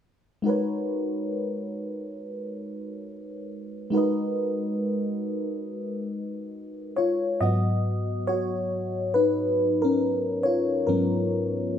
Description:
R&B; 69 BPM; 4/4; swing 59% on 16ths; G# minor; A4 = 440 Hz
mellow FM electric piano; solo; 0.4-11.8 s; G#2 to D#5; -24 LUFS; left 1 dB; chorus, phaser
wet studio reverb, RT60 0.6 s; small room ambience; -24 LUFS; side -9 dB against mid
0.4-7.4 A section; 7.4-11.8 B section
FM electric piano solo 7.4-11.8
0.4 G#m11

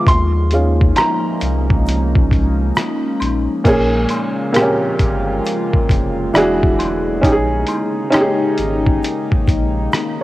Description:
lo-fi hip hop; 67 BPM; 4/4; swing 66% on 16ths; A4 = 440 Hz
warm upright piano; accompaniment; 0.0-10.2 s; Bb2 to C6; -18 LUFS; right 1 dB; cassette tape
warbly tape-like pad; sustained chords; 0.0-10.2 s; Db3 to F4; -21 LUFS; left 1 dB; chorus, built-in reverb, phaser, cassette tape
warm sub bass; bass; 0.1-9.9 s; E1 to Eb2; -19 LUFS; equal
lo-fi sampler-style drum kit; drums; 0.1-10.2 s; crash cymbal, hi-hat, kick drum, rim click; -17 LUFS; equal; cassette tape
egg shaker and woodblock; percussion; 0.1-10.2 s; -31 LUFS; left 1 dB
digital ambience; home recording on cassette; -14 LUFS; side -16 dB against mid
0.0-3.6 A section; 3.6-10.2 B section
upright piano solo 0.0-3.6
0.1 Eb9sus4; 3.6 Bbm7; 6.3 E9; 7.2 Eb7sus4

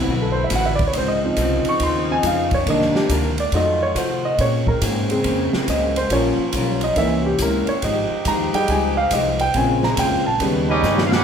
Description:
jazz, big band swing; 140 BPM; 4/4; swing 66% on 8ths; A4 = 438 Hz
warm grand piano; accompaniment; 0.0-11.1 s; Db3 to Db6; -20 LUFS; right 1 dB
warm saxophone section; sustained chords; 0.0-11.2 s; C3 to B4; -29 LUFS; right 1 dB
upright bass; bass; 0.0-11.2 s; Ab1 to C3; -24 LUFS; equal
vintage hollow-body jazz guitar; accompaniment; 0.1-11.1 s; Bb2 to C5; -26 LUFS; left 4 dB
swinging big-band drum kit; drums; 0.1-11.2 s; hi-hat, kick drum, ride cymbal, snare drum; -25 LUFS; right 1 dB
bright trumpet section; melody; 10.7-11.2 s; Db4 to F#5; -19 LUFS; right 2 dB
bright trombone section; second line; 10.7-11.2 s; G3 to F#4; -25 LUFS; right 2 dB
moderate large studio reverb, RT60 1.2 s; band playing live in one room; -17 LUFS; side -7 dB against mid
0.0-11.2 A section
grand piano solo 0.0-11.2; drum fill 10.8-11.2
0.0 D13; 0.9 Dbmaj9; 2.7 Cm9; 3.5 F7b9; 4.4 Bbm9; 6.1 Gm7b5; 7.0 C7b9; 7.8 Fm9; 9.5 Bbm7; 10.4 Eb7alt

